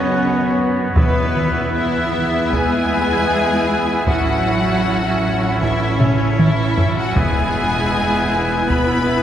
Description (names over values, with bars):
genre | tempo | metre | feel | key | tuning
cinematic, epic orchestral film score | 78 BPM | 4/4 | straight | E major | A4 = 442 Hz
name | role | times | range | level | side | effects
rich symphonic violin section | melody | 0.0-9.2 s | B4 to B5 | -24 LUFS | left 3 dB | none
warm symphonic violin section | second line | 0.0-9.2 s | B3 to B4 | -24 LUFS | left 2 dB | none
warm symphonic viola section | accompaniment | 0.0-9.2 s | B3 to E4 | -24 LUFS | equal | none
dark French horn section | sustained chords | 0.0-9.2 s | B3 to E4 | -25 LUFS | left 2 dB | none
pipe organ, soft reed | sustained chords | 0.0-9.2 s | B3 to E5 | -23 LUFS | equal | none
rich symphonic double bass section | bass | 0.0-9.2 s | E1 to F#2 | -24 LUFS | right 3 dB | none
warm symphonic cello section | bass | 0.0-9.2 s | B2 to B3 | -25 LUFS | right 2 dB | none
taiko ensemble | drums | 1.0-9.2 s | none | -22 LUFS | equal | none
timpani | percussion | 1.0-2.1, 7.2-8.3 s | E2 | -28 LUFS | left 1 dB | none
room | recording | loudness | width
wet cathedral reverb, RT60 5.0 s | recorded in a church or concert hall | -15 LUFS | side -10 dB against mid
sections
0.0-9.2 A section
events
drum fill 6.0-7.2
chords
0.0 Bsus2/F#; 1.0 E; 4.1 A; 7.2 E